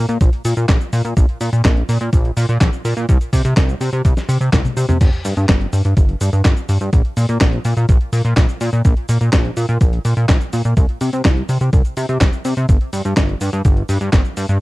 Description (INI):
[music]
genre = italo disco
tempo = 125 BPM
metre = 4/4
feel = straight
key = unclear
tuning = A4 = 440 Hz
[part]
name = chorused synth bass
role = bass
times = 0.0-14.6 s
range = G1 to C3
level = -17 LUFS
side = equal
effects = none
[part]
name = dusty soul sampler-style drum kit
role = drums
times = 0.1-14.6 s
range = cabasa, crash cymbal, handclaps, hi-hat, snare drum, toms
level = -21 LUFS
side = equal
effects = small room ambience
[part]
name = electronic kick drum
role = drums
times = 0.2-14.2 s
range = none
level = -14 LUFS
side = equal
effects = overdrive, small room ambience
[sound]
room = digital ambience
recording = dry, close 1970s-style studio recording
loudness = -13 LUFS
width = side -19 dB against mid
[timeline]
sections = 0.0-14.6 A section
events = drum fill 4.5-5.0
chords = none